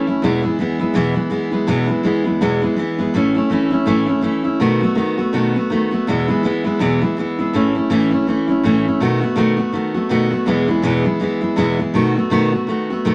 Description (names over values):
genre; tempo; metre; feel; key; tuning
rock; 164 BPM; 4/4; swing 58% on 8ths; E major; A4 = 438 Hz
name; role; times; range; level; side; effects
picked steel-string acoustic guitar; solo; 0.0-13.1 s; E2 to F#4; -18 LUFS; equal; none
room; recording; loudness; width
wet studio ambience, RT60 0.5 s; none; -18 LUFS; mono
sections
0.0-7.5 A section; 7.5-13.1 B section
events
none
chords
0.2 E; 3.1 A; 4.6 B7; 6.1 E; 7.5 A; 9.0 B7; 10.5 E; 11.9 B7